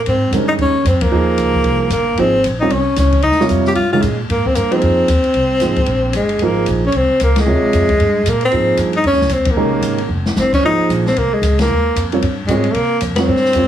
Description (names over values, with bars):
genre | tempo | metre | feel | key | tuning
modal jazz | 227 BPM | 4/4 | swing 60% on 8ths | Ab major | A4 = 440 Hz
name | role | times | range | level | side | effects
upright bass | bass | 0.0-13.7 s | F1 to C3 | -19 LUFS | equal | none
breathy tenor saxophone | melody | 0.1-13.7 s | Ab3 to G4 | -16 LUFS | left 1 dB | none
open jazz drum kit | drums | 0.1-13.6 s | crash cymbal, hi-hat, kick drum, ride cymbal, snare drum | -24 LUFS | left 2 dB | none
warm grand piano | accompaniment | 0.3-13.7 s | C3 to Db5 | -18 LUFS | right 3 dB | none
room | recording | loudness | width
light reverb | heavily compressed radio sound, small room ambience | -13 LUFS | side -10 dB against mid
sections
0.0-13.7 A section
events
band accent 1.0, 7.3, 9.4, 11.6, 13.1; drum fill 10.1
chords
0.0 Abmaj9